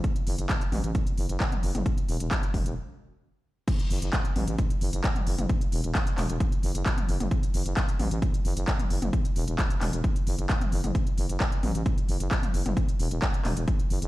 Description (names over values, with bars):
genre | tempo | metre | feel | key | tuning
driving peak-time techno | 132 BPM | 4/4 | straight | F# minor | A4 = 439 Hz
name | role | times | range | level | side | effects
electronic kick drum | drums | 0.0-13.8 s | none | -26 LUFS | equal | overdrive, studio reverb
techno drum kit | drums | 0.0-14.1 s | crash cymbal, handclaps, hi-hat, toms | -32 LUFS | left 1 dB | overdrive, sidechain pumping on hats, studio reverb, sidechain pumping on toms, sidechain pumping on cymbals
growling FM bass | bass | 0.3-14.1 s | E1 to A1 | -27 LUFS | equal | sidechain pumping
room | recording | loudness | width
digital ambience | played on a big sound system in a bare room, large studio reverb | -24 LUFS | side -17 dB against mid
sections
0.0-3.7 A section; 3.7-14.1 B section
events
stop 2.8-3.7; drop 3.7-14.1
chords
none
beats
| 0.04 0.49 0.95 1.40 | 1.86 2.31 2.77 3.22 | 3.68 4.13 4.59 5.04 | 5.50 5.95 6.40 6.86 | 7.31 7.77 8.22 8.68 | 9.13 9.59 10.04 10.49 | 10.95 11.40 11.86 12.31 | 12.77 13.22 13.68